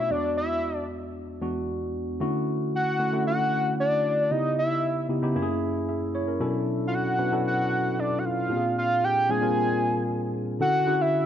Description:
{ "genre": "pop", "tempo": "114 BPM", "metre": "4/4", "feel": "straight", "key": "unclear", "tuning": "A4 = 441 Hz", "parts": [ { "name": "fat analog lead", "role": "melody", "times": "0.0-11.3 s", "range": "D5 to Ab5", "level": "-25 LUFS", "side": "equal", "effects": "none" }, { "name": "tine electric piano", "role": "accompaniment", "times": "0.0-11.3 s", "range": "E2 to E5", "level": "-26 LUFS", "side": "left 1 dB", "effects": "overdrive, wide subtle chorus" } ], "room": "light reverb", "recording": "nothing above 7.6 kHz", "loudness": "-23 LUFS", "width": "side -9 dB against mid", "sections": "0.0-2.2 A section; 2.2-10.6 B section", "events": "none", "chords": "0.1 E7; 2.2 Dmaj7; 4.3 C#m7b5; 5.4 F#7; 6.4 Bm11; 8.5 Bb13; 10.6 Dmaj7" }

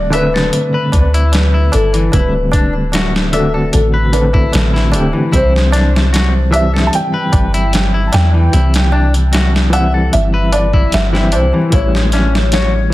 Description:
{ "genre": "trip hop", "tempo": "75 BPM", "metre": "4/4", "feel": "straight", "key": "unclear", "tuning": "A4 = 440 Hz", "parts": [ { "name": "felt-muted upright piano", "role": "melody", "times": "0.0-12.9 s", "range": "A4 to A5", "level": "-19 LUFS", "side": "left 1 dB", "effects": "tape echo" }, { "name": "overdriven reed electric piano", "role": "accompaniment", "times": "0.0-12.9 s", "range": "D3 to B4", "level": "-18 LUFS", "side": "equal", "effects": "tremolo" }, { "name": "soft 808-style bass", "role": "bass", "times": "0.0-12.9 s", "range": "D1 to E2", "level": "-14 LUFS", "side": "equal", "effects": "none" }, { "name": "clean electric guitar", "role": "arpeggios", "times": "0.1-12.7 s", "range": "E3 to E5", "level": "-21 LUFS", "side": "left 3 dB", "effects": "digital delay" }, { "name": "boom bap sampler-style drum kit", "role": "drums", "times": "0.1-12.7 s", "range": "hi-hat, kick drum, snare drum", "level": "-16 LUFS", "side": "equal", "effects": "none" }, { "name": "tabla", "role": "percussion", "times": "0.1-12.9 s", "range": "none", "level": "-28 LUFS", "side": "right 2 dB", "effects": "none" } ], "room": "little or no reverb", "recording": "dense, heavily limited modern master, vinyl crackle", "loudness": "-10 LUFS", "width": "side -16 dB against mid", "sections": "0.0-12.9 A section", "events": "none", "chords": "0.0 D7sus4; 5.3 C; 11.7 A7" }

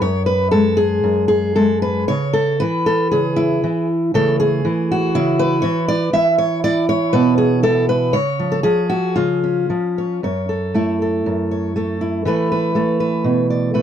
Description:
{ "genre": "folk, solo fingerstyle acoustic guitar", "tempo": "119 BPM", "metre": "4/4", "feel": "rubato", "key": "F# minor", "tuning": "A4 = 445 Hz", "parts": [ { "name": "fingerpicked steel-string acoustic guitar", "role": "solo", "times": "0.0-13.8 s", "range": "F#2 to E5", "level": "-15 LUFS", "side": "equal", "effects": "none" } ], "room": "little or no reverb", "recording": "dry, close 1970s-style studio recording", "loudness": "-15 LUFS", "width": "side -9 dB against mid", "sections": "0.0-10.2 A section; 10.2-13.8 B section", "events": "none", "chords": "0.0 F#sus2; 2.1 C#m; 4.1 A/C#; 6.1 E5; 8.1 C#; 10.2 F#m7; 12.3 Esus4" }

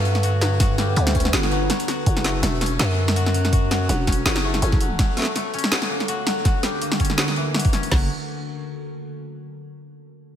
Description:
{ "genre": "half-time drum and bass", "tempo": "164 BPM", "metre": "4/4", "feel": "swing 55% on 16ths, half-time", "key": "F# phrygian", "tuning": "A4 = 439 Hz", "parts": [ { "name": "deep dark ambient pad", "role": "sustained chords", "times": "0.0-9.3 s", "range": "D3 to B4", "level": "-29 LUFS", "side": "right 1 dB", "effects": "chorus, built-in reverb, sidechain pumping" }, { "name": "koto", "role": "arpeggios", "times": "0.0-8.1 s", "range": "E3 to F#4", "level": "-28 LUFS", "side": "left 4 dB", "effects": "vintage 12-bit sampler grit, low-pass filter, diffuse ambient delay" }, { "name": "growling 808-style bass", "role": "bass", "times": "0.0-5.0, 7.9-8.1 s", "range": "E1 to G2", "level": "-21 LUFS", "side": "equal", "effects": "none" }, { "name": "drum and bass drum kit", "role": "drums", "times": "0.1-7.9 s", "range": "hi-hat, snare drum", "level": "-23 LUFS", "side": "equal", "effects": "overdrive, studio ambience" }, { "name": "drum and bass drum kit", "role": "drums", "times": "0.6-8.0 s", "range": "crash cymbal, kick drum, snare drum", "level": "-20 LUFS", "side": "equal", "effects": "overdrive, studio ambience" } ], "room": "light reverb", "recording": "none", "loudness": "-18 LUFS", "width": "side -10 dB against mid", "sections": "0.0-2.1 A section; 2.1-7.9 B section; 7.9-9.4 C section", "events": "drop 0.0-2.1; break 1.7-2.1", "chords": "0.0 Gadd9; 2.1 F#m; 5.0 Gmadd9; 7.9 F#m" }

